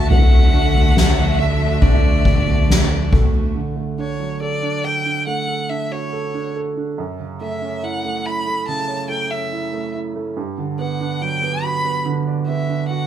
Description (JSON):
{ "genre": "pop ballad", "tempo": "70 BPM", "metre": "4/4", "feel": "straight", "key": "D major", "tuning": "A4 = 440 Hz", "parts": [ { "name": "warm violin", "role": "melody", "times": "0.0-13.1 s", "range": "C#5 to B5", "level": "-24 LUFS", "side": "left 1 dB", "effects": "none" }, { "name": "warm upright piano", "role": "accompaniment", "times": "0.0-13.1 s", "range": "F#2 to D5", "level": "-24 LUFS", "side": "right 5 dB", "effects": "none" }, { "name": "warm studio string section", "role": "sustained chords", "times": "0.0-3.5 s", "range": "D3 to E5", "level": "-25 LUFS", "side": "equal", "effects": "none" }, { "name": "picked steel-string acoustic guitar", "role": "arpeggios", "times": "0.0-4.1 s", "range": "D3 to A4", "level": "-29 LUFS", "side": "left 3 dB", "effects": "none" }, { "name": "fingered electric bass", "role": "bass", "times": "0.0-3.5 s", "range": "D2", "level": "-22 LUFS", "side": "right 1 dB", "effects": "none" }, { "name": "soft-mallet drum kit", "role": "drums", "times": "0.1-3.3 s", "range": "kick drum, snare drum, toms", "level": "-15 LUFS", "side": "left 1 dB", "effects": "none" } ], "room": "light reverb", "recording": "band playing live in one room", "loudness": "-17 LUFS", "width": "side -10 dB against mid", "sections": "0.0-3.6 A section; 3.6-13.1 B section", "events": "none", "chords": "0.0 Dadd9; 3.6 D; 7.0 F#m7; 10.4 Gmaj7", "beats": "| 0.11 0.95 1.82 2.69 | 3.55 4.41 5.27 6.12 | 6.98 7.83 8.67 9.51 | 10.36 11.21 12.05 12.90" }